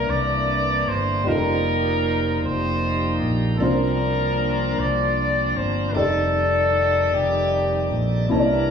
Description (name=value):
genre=slow gospel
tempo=51 BPM (dotted quarters)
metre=6/8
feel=straight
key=unclear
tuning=A4 = 440 Hz
part: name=warm trumpet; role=melody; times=0.0-8.7 s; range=G4 to D5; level=-24 LUFS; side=equal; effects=none
part: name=warm baby grand piano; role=accompaniment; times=0.0-8.7 s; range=C3 to A5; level=-26 LUFS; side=equal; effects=none
part: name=bright tonewheel organ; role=sustained chords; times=0.0-8.7 s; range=E3 to D5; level=-31 LUFS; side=right 2 dB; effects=slow rotary speaker, overdrive
part: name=mellow French horn section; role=sustained chords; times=0.0-8.7 s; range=Eb3 to D5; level=-25 LUFS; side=left 2 dB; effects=none
part: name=fingered electric bass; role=bass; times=0.0-8.7 s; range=F1 to C2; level=-25 LUFS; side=equal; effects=none
room=wet large studio reverb, RT60 1.3 s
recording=band playing live in one room, small room ambience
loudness=-19 LUFS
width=side -7 dB against mid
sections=0.0-8.7 A section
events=none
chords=0.0 C9; 1.3 F9sus4; 3.6 C9sus4; 6.0 F13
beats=0.09 | 1.26 2.44 | 3.61 4.78 | 5.96 7.13 | 8.30